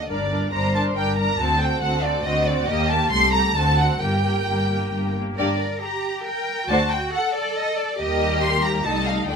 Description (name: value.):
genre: quick classical-period movement for string orchestra.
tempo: 138 BPM.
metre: 3/4.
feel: straight.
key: G minor.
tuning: A4 = 440 Hz.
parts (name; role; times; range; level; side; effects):
rich studio violin section; melody; 0.0-9.4 s; D5 to C6; -23 LUFS; equal; none.
rich studio viola section; accompaniment; 0.1-9.4 s; D3 to Bb4; -27 LUFS; equal; none.
clear studio cello section; bass; 0.1-9.4 s; C2 to Bb4; -28 LUFS; right 1 dB; none.
rich studio double bass section; bass; 0.1-9.4 s; G1 to G2; -25 LUFS; equal; none.
rich studio violin section; second line; 0.5-9.4 s; F#4 to Eb5; -27 LUFS; equal; none.
room: light reverb.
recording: minimal, uncompressed stereo recording.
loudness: -19 LUFS.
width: side -6 dB against mid.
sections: 0.0-5.4 A section; 5.4-9.4 A section.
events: none.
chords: 0.1 Gm; 1.4 D7; 2.7 Eb; 3.1 Am7/C; 3.6 D7; 4.0 Gm; 6.7 D; 8.0 Eb; 8.9 Am7b5/C.